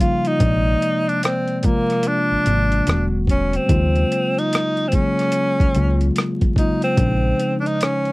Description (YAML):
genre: R&B, neo-soul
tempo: 73 BPM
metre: 4/4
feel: swing 63% on 16ths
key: Bb minor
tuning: A4 = 440 Hz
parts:
  - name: clear tenor saxophone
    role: melody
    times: 0.0-8.1 s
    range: Bb3 to F4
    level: -21 LUFS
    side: equal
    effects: none
  - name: mellow tine electric piano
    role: accompaniment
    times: 0.0-8.1 s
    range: C3 to D5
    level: -22 LUFS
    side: left 1 dB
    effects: none
  - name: boom bap sampler-style drum kit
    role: drums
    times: 0.0-8.1 s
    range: hi-hat, kick drum, rim click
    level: -20 LUFS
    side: equal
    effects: overdrive
  - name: solid FM bass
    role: bass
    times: 0.4-7.3 s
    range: E1 to Eb2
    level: -19 LUFS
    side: equal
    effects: none
room: light reverb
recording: dry, close 1970s-style studio recording, vinyl crackle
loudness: -16 LUFS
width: side -22 dB against mid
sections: 0.0-8.1 A section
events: none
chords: 0.4 Bb7; 2.9 Em11; 3.7 Ebm11; 7.0 Bbm11